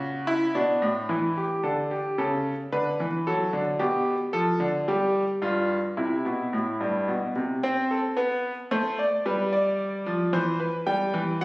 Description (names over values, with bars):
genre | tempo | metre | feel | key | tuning
classical, baroque-style two-part invention for grand piano | 111 BPM | 3/4 | straight | E minor, C major from 4.3 s | A4 = 440 Hz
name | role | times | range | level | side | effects
bright grand piano | solo | 0.0-11.4 s | G2 to G5 | -23 LUFS | equal | none
room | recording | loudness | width
wet recital hall reverb, RT60 1.7 s | recorded on a phone in the room, studio reverb, nothing above 10.4 kHz | -23 LUFS | side -22 dB against mid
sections
0.0-1.1 A section; 1.1-7.6 B section; 7.6-11.4 A section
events
none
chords
0.0 F#7(no3); 0.5 Bm; 1.1 Em; 2.2 A/C#; 2.7 D; 3.8 G/B; 4.3 Dm/F; 4.9 N.C.; 5.4 Fsus2/G; 6.0 C; 7.6 Amadd9; 8.7 D5/A; 9.3 G7; 10.3 C/E; 10.9 Em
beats
0.00 0.55 | 1.09 1.64 2.18 | 2.72 3.27 3.81 | 4.34 4.88 5.42 | 5.97 6.53 7.08 | 7.63 8.18 8.72 | 9.25 9.79 10.33 | 10.87 11.41